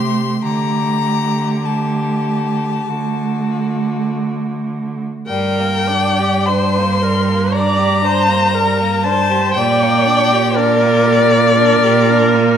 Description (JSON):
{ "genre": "classical, slow romantic movement for string quartet", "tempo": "48-60 BPM", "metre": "4/4", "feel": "rubato", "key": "G minor", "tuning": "A4 = 439 Hz", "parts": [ { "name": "rich violin", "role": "melody", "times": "0.0-12.6 s", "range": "G3 to C6", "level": "-22 LUFS", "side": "left 9 dB", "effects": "none" }, { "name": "warm violin", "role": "second line", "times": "0.0-12.6 s", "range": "F#4 to C6", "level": "-18 LUFS", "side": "left 3 dB", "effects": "none" }, { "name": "dark viola", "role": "accompaniment", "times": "0.0-12.6 s", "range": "A3 to D5", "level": "-18 LUFS", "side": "right 2 dB", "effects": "none" }, { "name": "rich cello", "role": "bass", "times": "0.0-12.6 s", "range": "G2 to D3", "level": "-18 LUFS", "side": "right 5 dB", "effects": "none" } ], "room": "moderate scoring stage reverb, RT60 2.0 s", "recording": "none", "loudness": "-13 LUFS", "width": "side -8 dB against mid", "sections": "0.0-5.3 A section; 5.3-12.6 B section", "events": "none", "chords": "0.4 Dsus4; 5.3 Gm; 9.6 Gm/Bb", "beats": "| 0.43 1.67 2.88 4.08 | 5.29 6.47 7.53 8.53 | 9.55 10.56 11.57 12.57" }